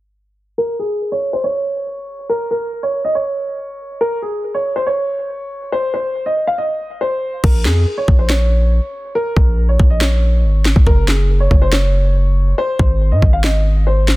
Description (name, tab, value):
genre	hip hop, trap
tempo	140 BPM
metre	4/4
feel	half-time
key	Bb minor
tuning	A4 = 441 Hz
part	dark grand piano	melody	0.6-14.2 s	Ab4 to F5	-19 LUFS	equal	low-pass filter
part	hard-hitting 808-style bass	bass	7.4-14.1 s	Gb1 to Ab2	-13 LUFS	equal	none
part	trap drum kit	drums	7.4-14.2 s	crash cymbal, handclaps, kick drum, snare drum	-14 LUFS	equal	none
room	digital ambience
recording	dense, heavily limited modern master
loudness	-14 LUFS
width	side -19 dB against mid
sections	0.6-7.4 A section; 7.4-14.2 B section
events	filter sweep on grand piano 0.6-7.4; hi-hats muted 7.4-14.2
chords	0.6 N.C.; 7.4 Bbm; 10.9 Gb5; 12.6 Ab